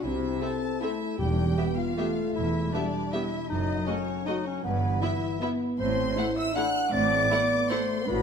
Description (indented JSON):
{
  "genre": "classical, orchestral ballroom waltz",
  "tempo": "157 BPM",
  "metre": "3/4",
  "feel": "uneven beats, rubato",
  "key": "unclear",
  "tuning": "A4 = 437 Hz",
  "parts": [
    { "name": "dark clarinet", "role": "second line", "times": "0.0-8.2 s", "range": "B3 to F#5", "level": "-30 LUFS", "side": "equal", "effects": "none" },
    { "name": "rich studio violin section", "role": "second line", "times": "0.0-8.2 s", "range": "B4 to F#6", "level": "-36 LUFS", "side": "left 2 dB", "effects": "none" },
    { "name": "mellow French horn section", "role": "sustained chords", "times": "0.0-8.2 s", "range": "E3 to F#4", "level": "-31 LUFS", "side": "left 3 dB", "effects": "none" },
    { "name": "dark chamber double bass section", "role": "bass", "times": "0.0-8.2 s", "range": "E1 to C2", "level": "-34 LUFS", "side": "right 4 dB", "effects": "none" },
    { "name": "warm chamber cello section", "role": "bass", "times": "0.0-8.2 s", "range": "E2 to C3", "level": "-33 LUFS", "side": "right 3 dB", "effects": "none" },
    { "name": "rich chamber violin section", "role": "melody", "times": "0.4-7.8 s", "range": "D#5 to F#5", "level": "-40 LUFS", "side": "left 4 dB", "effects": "none" },
    { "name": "warm chamber viola section", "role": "accompaniment", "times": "0.4-7.8 s", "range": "A3 to A4", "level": "-36 LUFS", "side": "right 1 dB", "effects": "none" },
    { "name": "timpani", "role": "percussion", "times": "1.2-1.7 s", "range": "E2", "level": "-34 LUFS", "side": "equal", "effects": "none" }
  ],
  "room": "wet scoring stage reverb, RT60 1.7 s",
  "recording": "none",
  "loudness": "-25 LUFS",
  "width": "side -6 dB against mid",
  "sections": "0.0-8.2 A section",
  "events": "none",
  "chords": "0.0 Am/C; 1.2 Em; 3.5 D#dim/F#; 4.6 Em/G; 5.8 F#m7b5/A"
}